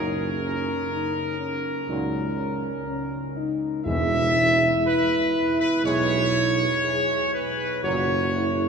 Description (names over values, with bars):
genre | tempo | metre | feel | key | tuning
classical | 60 BPM | 4/4 | straight | unclear | A4 = 440 Hz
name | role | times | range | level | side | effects
bright trumpet section | melody | 0.0-8.7 s | A#4 to E5 | -24 LUFS | equal | none
mellow French horn section | sustained chords | 0.0-8.7 s | C#4 to G#4 | -27 LUFS | equal | none
mellow trombone section | sustained chords | 0.0-8.2 s | A#2 to G#3 | -35 LUFS | equal | none
dark tuba | bass | 0.0-8.7 s | E1 to C#2 | -29 LUFS | right 2 dB | none
timpani | percussion | 3.9-5.3 s | E2 | -35 LUFS | left 2 dB | none
room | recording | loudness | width
wet cathedral reverb, RT60 6.6 s | minimal, uncompressed stereo recording | -21 LUFS | side -6 dB against mid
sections
0.0-8.7 A section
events
none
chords
0.0 F#; 3.9 E; 7.8 F#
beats
0.91 1.89 2.87 | 3.86 4.85 5.84 6.83 | 7.84